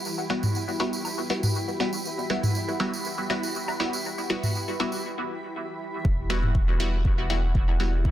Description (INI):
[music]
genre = dub techno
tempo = 120 BPM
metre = 4/4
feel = swing 53% on 16ths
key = E minor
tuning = A4 = 440 Hz
[part]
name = granular cloud pad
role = sustained chords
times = 0.0-8.1 s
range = E4 to B5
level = -34 LUFS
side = equal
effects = built-in reverb, sidechain pumping
[part]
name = tambourine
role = percussion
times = 0.1-5.0 s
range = none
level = -35 LUFS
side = right 3 dB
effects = none
[part]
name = filtered dub chord stab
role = stabs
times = 0.3-8.0 s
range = G3 to F#4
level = -29 LUFS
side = equal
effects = chorus, phaser, dub echo
[part]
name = electronic hi-hat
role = drums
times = 0.3-7.9 s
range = none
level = -33 LUFS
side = equal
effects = none
[part]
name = electronic toms and woodblock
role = percussion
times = 0.4-7.8 s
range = none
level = -28 LUFS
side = equal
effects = sidechain pumping on toms, sidechain pumping on perc
[part]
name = round analog bass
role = bass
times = 6.0-8.1 s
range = E1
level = -25 LUFS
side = equal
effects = sidechain pumping
[part]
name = electronic kick drum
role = drums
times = 6.0-8.1 s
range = none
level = -24 LUFS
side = equal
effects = overdrive
[sound]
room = light reverb, digital ambience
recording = dense, heavily limited modern master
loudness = -24 LUFS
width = side -12 dB against mid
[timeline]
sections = 0.0-6.0 A section; 6.0-8.1 B section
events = filter sweep on synth stab 0.0-6.0, 6.0-8.1; break 5.0-6.0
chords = 0.0 Emadd9